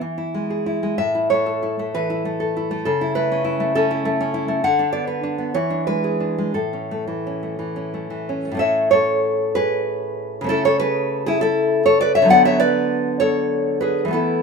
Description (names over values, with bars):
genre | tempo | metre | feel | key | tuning
romantic piece for solo classical guitar | 56-69 BPM (dotted quarters) | 6/8 | rubato | A major | A4 = 440 Hz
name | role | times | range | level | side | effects
nylon-string guitar | solo | 0.0-14.4 s | A2 to F#5 | -18 LUFS | equal | none
room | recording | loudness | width
light reverb | minimal, uncompressed stereo recording | -18 LUFS | side -5 dB against mid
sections
0.0-8.6 A section; 8.6-14.4 A section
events
none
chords
0.0 E; 1.0 A; 2.9 A/C#; 4.6 Bm/D; 5.6 E7; 6.5 A; 10.5 A/C#; 12.3 Bm/D